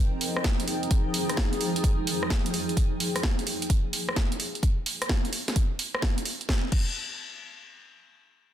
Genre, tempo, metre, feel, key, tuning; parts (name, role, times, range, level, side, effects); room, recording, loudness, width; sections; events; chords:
UK garage, two-step garage; 129 BPM; 4/4; swing 66% on 16ths; A4 = 440 Hz
granular cloud pad; texture; 0.0-2.8 s; F3 to G5; -31 LUFS; equal; built-in reverb, sidechain pumping
house drum kit; drums; 0.2-6.9 s; crash cymbal, hi-hat, rim click, snare drum; -29 LUFS; right 1 dB
electronic kick drum; drums; 0.4-6.9 s; -25 LUFS; equal
little or no reverb; dense, heavily limited modern master; -24 LUFS; side -11 dB against mid
0.0-6.5 A section; 6.5-8.5 B section
0.0 Fm9; 2.5 Bbm7; 4.4 N.C.